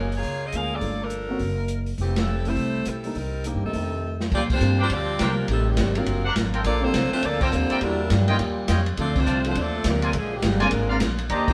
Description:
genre	jazz, big band swing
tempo	206 BPM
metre	4/4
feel	swing 62% on 8ths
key	F major, Bb major from 4.3 s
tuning	A4 = 440 Hz
part	bright saxophone section	melody	0.0-11.5 s	Eb3 to F5	-31 LUFS	equal	none
part	upright bass	bass	0.0-11.5 s	F1 to Bb2	-28 LUFS	equal	none
part	open jazz drum kit	drums	0.1-11.5 s	crash cymbal, hi-hat, kick drum, ride cymbal, snare drum	-31 LUFS	equal	none
part	warm concert grand piano	accompaniment	0.5-11.5 s	F3 to C5	-32 LUFS	equal	none
part	bright trombone section	second line	3.6-11.5 s	Ab2 to D4	-31 LUFS	equal	none
part	clear trumpet section	stabs	4.8-11.5 s	D4 to Bb5	-30 LUFS	equal	none
room	moderate studio reverb, RT60 0.9 s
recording	band playing live in one room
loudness	-24 LUFS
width	mono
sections	0.0-4.3 A section; 4.3-11.5 B section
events	band accent 2.1, 4.5, 7.4, 9.1; drum fill 4.0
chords	0.0 Gbmaj9; 0.8 Gm9; 1.4 Gb; 2.0 Fmaj9; 3.2 Cm7; 3.7 F13; 4.3 Bb69; 5.5 Am7b5; 6.1 D7alt; 6.7 Gm9; 7.8 Em7b5; 8.4 Eb9; 9.0 Dm7; 10.1 Bb7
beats	0.23 0.52 | 0.81 1.11 1.40 1.69 | 1.99 2.28 2.57 2.86 | 3.15 3.45 3.74 4.03 | 4.32 4.61 4.91 5.20 | 5.49 5.78 6.07 6.36 | 6.65 6.94 7.23 7.52 | 7.81 8.11 8.39 8.69 | 8.98 9.27 9.56 9.85 | 10.14 10.43 10.72 11.01 | 11.30

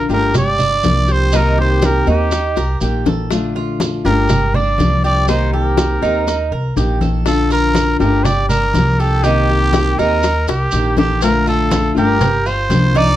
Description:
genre	latin, Cuban son and guajira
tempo	121 BPM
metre	4/4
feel	straight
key	Bb major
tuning	A4 = 439 Hz
part	growling trumpet	melody	0.0-13.2 s	G4 to D5	-18 LUFS	right 1 dB	none
part	nylon-string guitar	accompaniment	0.0-13.2 s	C3 to G4	-19 LUFS	left 4 dB	none
part	Cuban tres	arpeggios	0.0-13.2 s	D4 to Bb4	-22 LUFS	right 5 dB	none
part	upright bass	bass	0.0-13.2 s	G1 to Eb2	-18 LUFS	equal	none
part	bongos and cowbell	percussion	0.1-13.2 s	none	-21 LUFS	left 5 dB	none
part	congas	percussion	0.1-13.2 s	none	-21 LUFS	equal	none
part	maracas	percussion	0.1-13.2 s	none	-30 LUFS	right 3 dB	none
room	light reverb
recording	dark, warm production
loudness	-13 LUFS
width	side -13 dB against mid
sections	0.0-11.2 A section; 11.2-13.2 B section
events	drum fill 2.6-3.3, 10.5-11.2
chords	0.3 Gm7; 1.3 Cm7; 2.3 Eb; 3.3 Bbmaj7; 4.3 Gm7; 5.3 Cm7; 6.3 Eb; 7.3 Bbmaj7; 8.3 Gm7; 9.2 Cm7; 10.2 Eb; 11.2 Bbmaj7; 12.2 Gm7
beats	0.35 0.84 | 1.33 1.83 2.32 2.82 | 3.31 3.81 4.30 4.79 | 5.29 5.78 6.28 6.77 | 7.27 7.76 8.26 8.75 | 9.24 9.74 10.23 10.73 | 11.22 11.72 12.21 12.70

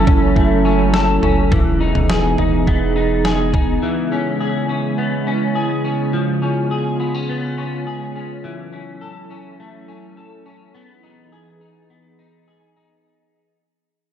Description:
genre	dream pop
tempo	104 BPM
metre	4/4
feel	straight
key	unclear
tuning	A4 = 444 Hz
part	warbly tape-like pad	sustained chords	0.0-13.0 s	C#3 to A4	-20 LUFS	right 2 dB	chorus, built-in reverb
part	electric guitar at the edge of break-up	arpeggios	0.0-13.6 s	E3 to A4	-22 LUFS	left 3 dB	ensemble chorus, ping-pong delay
part	round analog bass	bass	0.0-3.8 s	E1 to F#1	-20 LUFS	equal	none
part	detuned 8-bit digital drum machine	drums	0.1-3.7 s	kick drum, snare drum, toms	-18 LUFS	equal	none
room	moderate scoring stage reverb, RT60 2.0 s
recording	dark, warm production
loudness	-15 LUFS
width	side -9 dB against mid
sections	0.0-13.1 A section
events	fade-out 0.0-13.1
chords	0.0 F#m7; 1.5 Emaj7; 3.8 C#m7; 6.1 C#7; 8.4 F#m7; 10.7 Emaj7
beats	0.36 0.94 | 1.52 2.09 2.67 3.25 | 3.82 4.40 4.98 5.55 | 6.13 6.71 7.29 7.86 | 8.44 9.02 9.59 10.17 | 10.75 11.32 11.90 12.48

